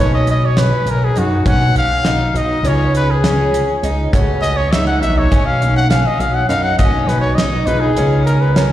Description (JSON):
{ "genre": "progressive instrumental, band music in an uneven meter", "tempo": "203 BPM (eighths)", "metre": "9/8", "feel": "straight", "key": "B lydian", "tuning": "A4 = 441 Hz", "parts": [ { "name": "clear trumpet", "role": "melody", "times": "0.0-8.7 s", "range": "F#4 to F#5", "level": "-18 LUFS", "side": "left 2 dB", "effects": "plate reverb, slapback echo, tape echo" }, { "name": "warm grand piano", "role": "accompaniment", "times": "0.0-8.3 s", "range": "B2 to F#4", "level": "-25 LUFS", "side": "left 1 dB", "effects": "plate reverb, slapback echo" }, { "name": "fingerpicked twelve-string acoustic guitar", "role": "arpeggios", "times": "0.0-8.7 s", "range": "C#4 to D#4", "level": "-21 LUFS", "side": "right 2 dB", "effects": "wide subtle chorus, plate reverb, slapback echo, tape echo" }, { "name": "fat analog bass", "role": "bass", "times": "0.0-8.7 s", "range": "A#1 to F#2", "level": "-16 LUFS", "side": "equal", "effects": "none" }, { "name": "damped 70s drum kit", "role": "drums", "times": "0.3-8.7 s", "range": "hi-hat, kick drum, snare drum", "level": "-18 LUFS", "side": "equal", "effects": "slapback echo" } ], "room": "moderate club reverb, RT60 0.6 s", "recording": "live gig heard through the venue's PA, recital hall reverb", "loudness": "-12 LUFS", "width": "side -13 dB against mid", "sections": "0.0-8.7 A section", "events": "trumpet solo 0.0-8.7", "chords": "0.0 Bmaj9; 2.7 C#9; 4.1 A6/C#; 5.3 Bmaj9; 8.0 C#9" }